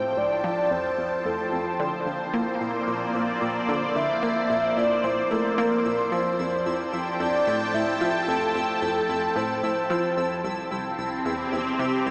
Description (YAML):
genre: ambient, sequencer-driven space music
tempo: 111 BPM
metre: 4/4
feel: straight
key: F major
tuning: A4 = 440 Hz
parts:
  - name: soft octave-layered synth lead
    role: melody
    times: 0.0-10.3 s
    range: A4 to E5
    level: -29 LUFS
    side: equal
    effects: chorus, shimmer reverb, tape echo
  - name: lush unison pad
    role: sustained chords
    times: 0.0-12.1 s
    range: F3 to A5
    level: -29 LUFS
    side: equal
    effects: chorus, phaser, shimmer reverb
  - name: analog pluck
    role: riff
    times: 0.0-12.1 s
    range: C2 to Bb3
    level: -33 LUFS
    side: equal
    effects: chorus, cassette tape, tape echo
  - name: pulsing gated texture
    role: texture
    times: 0.0-12.1 s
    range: E4 to E6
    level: -36 LUFS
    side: equal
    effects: chorus, built-in reverb, shimmer reverb
room: wet concert hall reverb, RT60 2.1 s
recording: small speaker sound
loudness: -25 LUFS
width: mono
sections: 0.0-12.1 A section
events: none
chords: 0.0 Fmaj7; 1.8 Bbmaj7; 6.1 Fmaj7; 10.4 Csus4